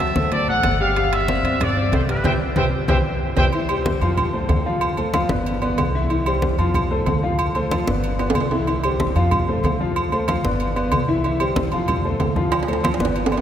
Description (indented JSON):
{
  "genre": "latin, salsa",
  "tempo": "187 BPM",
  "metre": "4/4",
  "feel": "straight",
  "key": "C major",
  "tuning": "A4 = 440 Hz",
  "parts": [
    { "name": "bright trumpet section", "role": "melody", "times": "0.0-3.5 s", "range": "B4 to G5", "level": "-23 LUFS", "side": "right 1 dB", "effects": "none" },
    { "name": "warm grand piano", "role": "accompaniment", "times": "0.0-13.4 s", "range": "E3 to G5", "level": "-23 LUFS", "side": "left 2 dB", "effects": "none" },
    { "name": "upright bass", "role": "bass", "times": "0.0-13.4 s", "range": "G1 to G2", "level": "-23 LUFS", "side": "equal", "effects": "none" },
    { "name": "congas", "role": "percussion", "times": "0.2-13.4 s", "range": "none", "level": "-26 LUFS", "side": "equal", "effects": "none" },
    { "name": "timbales and agogo bells", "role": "percussion", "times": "0.3-13.4 s", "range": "none", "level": "-25 LUFS", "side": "right 3 dB", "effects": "none" }
  ],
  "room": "wet cathedral reverb, RT60 5.6 s",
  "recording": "recorded in a church or concert hall",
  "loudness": "-18 LUFS",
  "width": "side -10 dB against mid",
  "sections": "0.0-3.5 A section; 3.5-13.4 B section",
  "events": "band accent 2.2-3.5; drum fill 2.7-3.5, 8.2-8.7, 12.5-13.4",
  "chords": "0.0 D7; 1.0 Gsus4; 2.2 Cmaj7; 3.5 C; 4.2 F; 4.8 Dm7; 5.5 G; 6.1 C; 6.7 F; 7.4 Dm7; 8.0 G; 8.7 C; 9.3 F; 10.0 Dm7; 10.6 G; 11.2 C; 11.9 F; 12.5 Dm7"
}